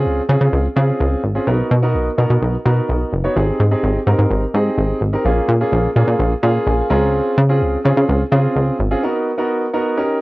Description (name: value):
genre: dance-pop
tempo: 127 BPM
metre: 4/4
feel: straight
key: unclear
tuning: A4 = 441 Hz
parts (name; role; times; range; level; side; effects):
- warm concert grand piano; accompaniment; 0.0-10.2 s; Bb3 to Bb5; -18 LUFS; right 1 dB; cassette tape
- plucky analog bass; bass; 0.0-8.9 s; F#1 to Db3; -16 LUFS; equal; none
room: light reverb, studio ambience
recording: home recording on cassette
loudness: -14 LUFS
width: side -20 dB against mid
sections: 0.0-10.2 A section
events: build-up 0.0-10.2; grand piano fill 6.2-7.1; break 9.0-10.2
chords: 0.0 Dbmaj7; 1.5 Bmaj7; 3.4 Abmaj7; 5.3 Bbm7; 6.9 Dbmaj7; 9.0 Bmaj7